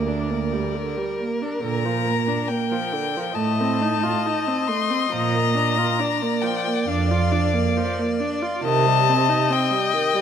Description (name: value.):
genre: classical, slow romantic movement for string quartet.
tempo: 68 BPM.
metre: 4/4.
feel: rubato.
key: unclear.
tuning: A4 = 440 Hz.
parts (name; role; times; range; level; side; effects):
warm violin; melody; 0.0-10.2 s; D5 to C6; -25 LUFS; left 10 dB; none.
warm violin; second line; 0.0-10.2 s; Bb4 to Eb5; -27 LUFS; left 4 dB; none.
warm viola; accompaniment; 0.0-10.2 s; D3 to F4; -25 LUFS; right 2 dB; none.
warm cello; bass; 0.0-9.4 s; D2 to C3; -25 LUFS; right 4 dB; none.
room: moderate scoring stage reverb, RT60 1.7 s.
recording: close, detailed microphones.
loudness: -19 LUFS.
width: side -8 dB against mid.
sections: 0.0-10.2 A section.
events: none.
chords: 0.0 Gm; 1.6 Bb; 3.4 F7/A; 5.1 Bb; 8.6 Cm.